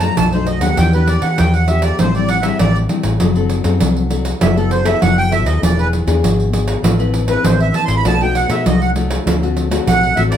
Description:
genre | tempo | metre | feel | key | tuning
samba and choro | 99 BPM | 4/4 | straight | E minor | A4 = 436 Hz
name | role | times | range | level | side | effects
accordion | melody | 0.0-10.4 s | A4 to C6 | -18 LUFS | right 4 dB | light tremolo tuning
nylon-string guitar | accompaniment | 0.0-10.4 s | F#2 to B4 | -19 LUFS | left 5 dB | none
vintage muted fingered electric bass | bass | 0.0-10.4 s | E1 to E3 | -17 LUFS | equal | none
pandeiro | percussion | 0.0-10.4 s | none | -19 LUFS | right 2 dB | none
room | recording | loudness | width
moderate studio reverb, RT60 0.8 s | none | -13 LUFS | side -9 dB against mid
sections
0.0-10.4 A section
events
accordion solo 0.0-10.4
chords
0.0 B7; 0.8 Em7; 2.0 Am7; 3.2 F#m7b5; 4.4 B7sus4/F#; 5.6 E7; 6.8 Amadd9; 8.1 B7; 9.3 D7

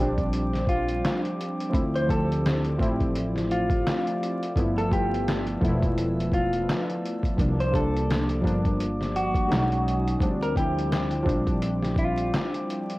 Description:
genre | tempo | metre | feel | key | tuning
lo-fi hip hop | 85 BPM | 4/4 | swing 58% on 16ths | unclear | A4 = 443 Hz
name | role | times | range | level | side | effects
warm analog keys | accompaniment | 0.0-13.0 s | F3 to G4 | -27 LUFS | equal | chorus, cassette tape, low-pass filter
glass harmonica | sustained chords | 0.0-13.0 s | Bb3 to E6 | -37 LUFS | left 1 dB | low-pass filter, cassette tape
upright bass | bass | 0.0-12.3 s | E1 to D2 | -29 LUFS | equal | none
lo-fi sampler-style drum kit | drums | 0.0-13.0 s | handclaps, hi-hat, kick drum, snare drum | -28 LUFS | equal | overdrive, vintage 12-bit sampler grit
electric guitar through a small old amp | melody | 0.7-12.5 s | F4 to C5 | -29 LUFS | equal | low-pass filter, cassette tape
room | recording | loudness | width
light reverb | home recording on cassette, vinyl crackle | -23 LUFS | side -19 dB against mid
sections
0.0-13.0 A section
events
none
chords
0.0 Bb69; 1.7 Dm7; 4.6 G13; 7.4 C9sus4; 9.5 B69; 10.2 Bb69

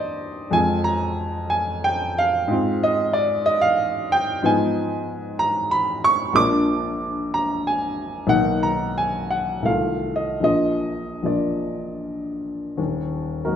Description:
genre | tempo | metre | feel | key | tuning
classical, romantic character piece for solo piano | 72-96 BPM | 3/4 | rubato | unclear | A4 = 442 Hz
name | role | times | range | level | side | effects
warm baby grand piano | solo | 0.0-13.6 s | Eb1 to D6 | -20 LUFS | equal | none
room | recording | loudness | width
wet recital hall reverb, RT60 1.6 s | none | -20 LUFS | side -9 dB against mid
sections
0.0-12.8 A section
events
none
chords
0.0 Eb/G; 0.6 Fm; 2.5 Fm/Ab; 4.5 Fm7b5/Ab; 6.4 Bb; 8.3 Bmaj7; 9.7 F7/C; 10.4 Bb; 12.8 Ebm

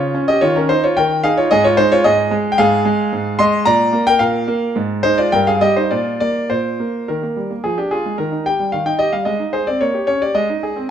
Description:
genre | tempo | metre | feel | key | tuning
classical-period piano sonatina | 110 BPM | 2/4 | rubato | Eb major | A4 = 441 Hz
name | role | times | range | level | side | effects
clear concert grand piano | solo | 0.0-10.9 s | G2 to C6 | -14 LUFS | equal | none
room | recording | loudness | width
moderate recital hall reverb, RT60 1.6 s | minimal, uncompressed stereo recording | -14 LUFS | side -9 dB against mid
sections
0.0-7.1 A section; 7.1-10.9 B section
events
none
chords
0.4 Eb5; 1.5 Ab5; 2.6 Fm/Ab; 3.7 Bb; 4.8 Ab6; 5.3 Eb/G; 5.9 Bb; 7.1 Eb; 7.6 Ddim/F; 8.2 Eb; 9.3 Ab; 9.8 Gdim/Bb; 10.4 Ab

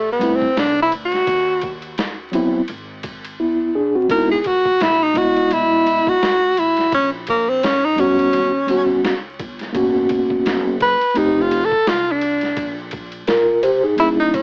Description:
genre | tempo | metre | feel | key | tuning
hip hop, jazz-hop | 85 BPM | 4/4 | swing 57% on 16ths | unclear | A4 = 440 Hz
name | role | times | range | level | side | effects
breathy tenor saxophone | melody | 0.0-14.4 s | A3 to B4 | -19 LUFS | equal | cassette tape
upright bass | bass | 0.0-14.4 s | F1 to E#2 | -37 LUFS | equal | none
mellow tine electric piano | accompaniment | 0.2-14.4 s | F#3 to D#5 | -19 LUFS | equal | cassette tape
boom bap sampler-style drum kit | drums | 0.2-14.4 s | hi-hat, kick drum, ride cymbal, snare drum | -30 LUFS | equal | cassette tape
room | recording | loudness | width
light reverb | home recording on cassette, vinyl crackle, AM radio sound | -18 LUFS | mono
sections
0.0-14.4 A section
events
tenor saxophone solo 0.0-14.4; drums muted 3.4-4.1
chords
0.0 Fmaj9 (rootless); 1.3 G#7b13 (rootless); 2.7 G#m(b13); 4.1 C#m9; 6.9 A#m; 8.3 D#7alt; 9.7 G#m11; 11.2 F7; 12.6 A#m

